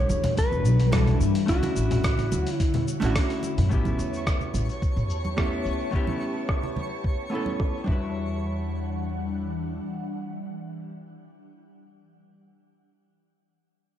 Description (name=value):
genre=sunset chillout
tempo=108 BPM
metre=4/4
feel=straight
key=E dorian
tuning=A4 = 439 Hz
part: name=mellow electric guitar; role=melody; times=0.0-3.1 s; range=F#4 to C#5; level=-30 LUFS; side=equal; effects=ping-pong delay, shimmer reverb
part: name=hollow-body jazz guitar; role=accompaniment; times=0.0-11.9 s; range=G3 to B4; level=-31 LUFS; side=moving between left 3 dB and right 4 dB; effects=auto-pan, ping-pong delay, shimmer reverb
part: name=ethereal airy pad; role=sustained chords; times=0.0-11.1 s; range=D3 to A5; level=-33 LUFS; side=left 3 dB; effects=ensemble chorus, built-in reverb, phaser, shimmer reverb
part: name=upright bass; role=bass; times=0.0-9.8 s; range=E1 to A2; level=-26 LUFS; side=equal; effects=tube saturation
part: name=dusty soul sampler-style drum kit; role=drums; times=0.1-7.8 s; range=cabasa, congas, hi-hat, rim click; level=-31 LUFS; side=left 1 dB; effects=low-pass filter on hats, low-pass filter on perc, low-pass filter on snare, low-pass filter on room
part: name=congas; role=percussion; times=0.1-7.6 s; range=none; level=-34 LUFS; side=right 3 dB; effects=none
part: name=electronic kick drum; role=drums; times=0.4-8.0 s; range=none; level=-26 LUFS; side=equal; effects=none
part: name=twinkling granular texture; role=texture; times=3.9-8.2 s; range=C#5 to C#6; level=-39 LUFS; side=equal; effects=built-in reverb, shimmer reverb
room=light reverb, digital ambience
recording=dark, warm production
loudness=-23 LUFS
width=side -11 dB against mid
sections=0.0-3.7 A section; 3.7-8.2 B section; 8.2-10.4 C section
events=filter sweep on drum 3.7-8.2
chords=0.0 Em9; 1.5 Dmaj7; 3.7 A7; 7.9 Em9